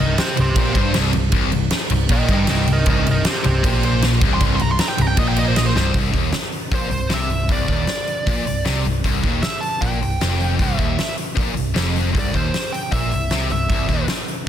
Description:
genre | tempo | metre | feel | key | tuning
hard rock | 155 BPM | 4/4 | straight | unclear | A4 = 440 Hz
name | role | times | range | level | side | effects
smooth overdriven lead guitar | melody | 0.0-14.0 s | G4 to C6 | -24 LUFS | right 2 dB | slapback echo
sludgy distorted guitar | riff | 0.0-14.1 s | C2 to C3 | -26 LUFS | right 9 dB | overdrive
sludgy distorted guitar | riff | 0.0-14.1 s | C2 to C3 | -27 LUFS | right 1 dB | overdrive
tight distorted guitar | riff | 0.0-14.1 s | C2 to C3 | -25 LUFS | left 10 dB | distortion
picked electric bass | bass | 0.0-14.1 s | C1 to C2 | -22 LUFS | equal | none
huge arena drum kit | drums | 0.2-14.4 s | hi-hat, kick drum, ride cymbal, snare drum | -21 LUFS | equal | none
room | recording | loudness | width
studio reverb | dense, heavily limited modern master | -16 LUFS | side -10 dB against mid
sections
0.0-6.0 A section; 6.0-14.5 B section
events
lead electric guitar solo 0.0-6.0; drum fill 5.8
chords
0.0 C5; 6.0 C

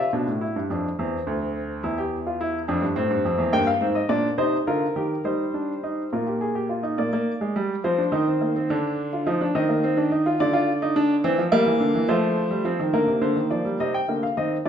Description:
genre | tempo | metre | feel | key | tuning
classical, baroque-style 3-part fugue for grand piano | 70 BPM (dotted quarters) | 6/8 | straight | unclear | A4 = 437 Hz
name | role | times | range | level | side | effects
clear baby grand piano | solo | 0.0-14.7 s | D2 to G5 | -21 LUFS | equal | none
room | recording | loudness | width
wet recital hall reverb, RT60 1.3 s | minimal, uncompressed stereo recording | -21 LUFS | side -8 dB against mid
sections
0.1-7.0 A section; 7.0-13.8 B section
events
none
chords
0.1 G7; 1.0 C; 1.8 Em; 2.7 Dm/F; 3.5 Gm; 4.4 Cm; 5.2 Eb/G; 6.1 Bb5; 7.0 Bb6; 7.8 F5; 8.7 Dm7; 9.5 Eb5; 10.4 Dm; 11.2 C7/E; 12.1 F7; 12.9 Cm11

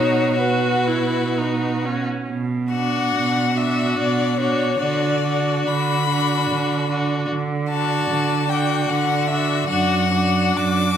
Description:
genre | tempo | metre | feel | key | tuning
classical, slow romantic movement for string quartet | 73 BPM | 3/4 | uneven beats, rubato | B minor | A4 = 440 Hz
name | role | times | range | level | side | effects
clear violin | melody | 0.0-11.0 s | B4 to D6 | -23 LUFS | left 7 dB | none
clear violin | second line | 0.0-11.0 s | F#4 | -26 LUFS | left 2 dB | none
rich viola | accompaniment | 0.0-11.0 s | C#4 to F#4 | -24 LUFS | right 1 dB | none
clear cello | bass | 0.0-11.0 s | F#2 to D3 | -22 LUFS | right 4 dB | none
room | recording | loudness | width
wet recital hall reverb, RT60 1.6 s | none | -18 LUFS | side -9 dB against mid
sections
0.0-2.3 A section; 2.3-11.0 B section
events
none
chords
0.0 B; 2.3 Bm; 4.8 Bm/D; 9.7 D/F#

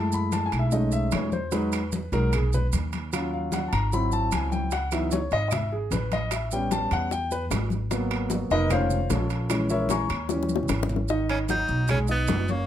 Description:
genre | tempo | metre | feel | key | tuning
Afro-Cuban jazz | 150 BPM | 4/4 | straight | G# minor | A4 = 443 Hz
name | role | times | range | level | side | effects
warm grand piano | accompaniment | 0.0-12.7 s | Eb3 to D#6 | -27 LUFS | left 1 dB | none
upright bass | bass | 0.0-12.7 s | E#1 to F#2 | -28 LUFS | equal | none
congas | percussion | 0.1-12.7 s | none | -33 LUFS | left 2 dB | none
maracas | percussion | 0.1-12.7 s | none | -40 LUFS | right 9 dB | none
timbales | percussion | 0.3-12.5 s | none | -36 LUFS | right 5 dB | none
claves | percussion | 0.5-12.1 s | none | -40 LUFS | right 8 dB | none
bongos | percussion | 4.7-12.7 s | none | -32 LUFS | left 7 dB | none
edgy tenor saxophone | melody | 11.3-12.7 s | A#3 to D#4 | -28 LUFS | right 1 dB | none
room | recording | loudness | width
light reverb | close, detailed microphones | -23 LUFS | side -10 dB against mid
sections
0.0-11.1 A section; 11.1-12.7 B section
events
grand piano solo 0.0-11.1; drum fill 10.3-11.1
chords
0.0 F#m7; 0.7 B13; 1.5 Emaj9; 3.1 D#m7; 3.9 G#aug7; 4.7 C#m11; 6.3 A9; 7.9 G#m9; 8.7 F7b13; 9.5 A#m7b5; 10.3 D#7b9; 11.1 G#m7

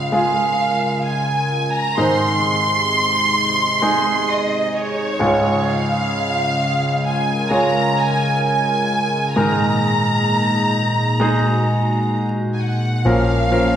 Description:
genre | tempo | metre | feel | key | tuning
pop | 65 BPM | 4/4 | straight | Db major | A4 = 440 Hz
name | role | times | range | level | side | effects
warm studio violin section | melody | 0.0-13.8 s | Db5 to C6 | -20 LUFS | right 1 dB | none
clear concert grand piano | accompaniment | 0.0-13.8 s | Db2 to Db5 | -20 LUFS | right 1 dB | none
warm analog pad | sustained chords | 0.0-13.8 s | Bb2 to Bb4 | -22 LUFS | equal | chorus
vintage muted fingered electric bass | bass | 13.1-13.8 s | Bb1 | -19 LUFS | equal | none
room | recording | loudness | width
wet recital hall reverb, RT60 1.4 s | recorded in a church or concert hall, vinyl crackle | -16 LUFS | side -9 dB against mid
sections
0.0-13.1 A section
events
none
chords
0.0 Db; 2.0 Ab; 5.2 Db; 9.4 Absus2; 13.1 Bbm

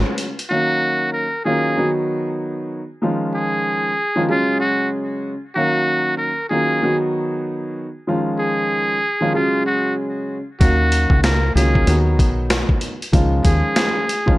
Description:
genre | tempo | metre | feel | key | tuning
hip hop, boom-bap hip-hop | 95 BPM | 4/4 | swing 59% on 16ths | unclear | A4 = 437 Hz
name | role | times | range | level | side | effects
dark baby grand piano | accompaniment | 0.0-14.4 s | C#3 to E#5 | -21 LUFS | equal | high-pass filter, low-pass filter
deep dub fingered electric bass | bass | 0.0, 10.6-13.6 s | B1 to D#2 | -17 LUFS | equal | tube saturation
boom bap sampler-style drum kit | drums | 0.2-0.5, 10.6-14.4 s | hi-hat, kick drum, snare drum | -18 LUFS | equal | none
trumpet with metal mute | melody | 0.5-14.4 s | E#4 to A#4 | -21 LUFS | equal | high-pass filter, low-pass filter
room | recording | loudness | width
light reverb | dry, gritty hardware recording | -16 LUFS | side -18 dB against mid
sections
0.5-14.4 A section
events
break 0.0-0.5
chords
0.0 F#sus2; 0.5 D#m7; 1.8 B/D#; 3.0 C#add9; 4.3 F#sus2/C#; 5.6 D#m7; 6.8 B/D#; 8.1 C#add9; 9.3 F#sus2/C#; 10.6 D#m7; 11.9 B; 13.1 C#add9

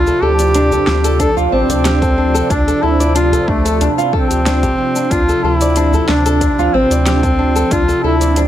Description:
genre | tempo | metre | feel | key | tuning
organic downtempo | 92 BPM | 4/4 | straight | D minor | A4 = 441 Hz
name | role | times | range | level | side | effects
clear duduk | melody | 0.0-8.4 s | A3 to A4 | -16 LUFS | equal | tape echo
warm analog pad | sustained chords | 0.0-8.5 s | C3 to D4 | -21 LUFS | right 2 dB | chorus, sidechain pumping
warm sub bass | bass | 0.0-8.5 s | A1 to D2 | -17 LUFS | equal | sidechain pumping
flamenco guitar | arpeggios | 0.1-8.5 s | C4 to D5 | -18 LUFS | left 2 dB | vintage 12-bit sampler grit, ping-pong delay
deep house drum kit | drums | 0.1-8.5 s | cabasa, hi-hat, snare drum | -22 LUFS | equal | none
udu | percussion | 0.7-7.0 s | none | -23 LUFS | equal | none
electronic kick drum | drums | 1.2-7.9 s | none | -19 LUFS | equal | none
room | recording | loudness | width
small room ambience | none | -11 LUFS | side -12 dB against mid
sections
0.0-8.5 A section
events
none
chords
0.0 Dm7

